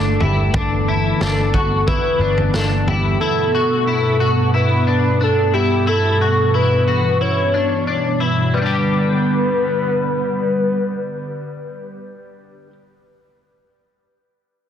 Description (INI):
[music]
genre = dream pop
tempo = 90 BPM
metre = 4/4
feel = straight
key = G major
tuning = A4 = 440 Hz
[part]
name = soft octave-layered synth lead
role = melody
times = 0.0-12.0 s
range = G4 to C#5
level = -20 LUFS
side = left 1 dB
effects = chorus, tape echo
[part]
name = hollow soft pad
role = sustained chords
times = 0.0-12.0 s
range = G2 to B3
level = -20 LUFS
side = right 1 dB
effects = ensemble chorus
[part]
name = electric guitar at the edge of break-up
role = arpeggios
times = 0.0-12.7 s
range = G3 to G4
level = -22 LUFS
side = left 3 dB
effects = ensemble chorus, tape echo
[part]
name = vintage muted picked electric bass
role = bass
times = 0.0-3.2 s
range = G1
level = -20 LUFS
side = equal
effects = none
[part]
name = vintage drum kit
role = drums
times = 0.2-3.0 s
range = kick drum, snare drum, toms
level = -23 LUFS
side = equal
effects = soft clipping on kick
[sound]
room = moderate plate reverb, RT60 1.5 s, small room reverb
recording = dense, heavily limited modern master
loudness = -15 LUFS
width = side -9 dB against mid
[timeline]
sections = 0.0-8.5 A section; 8.5-11.2 B section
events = none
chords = 0.0 Asus4/G; 3.2 Bsus2/G; 8.5 G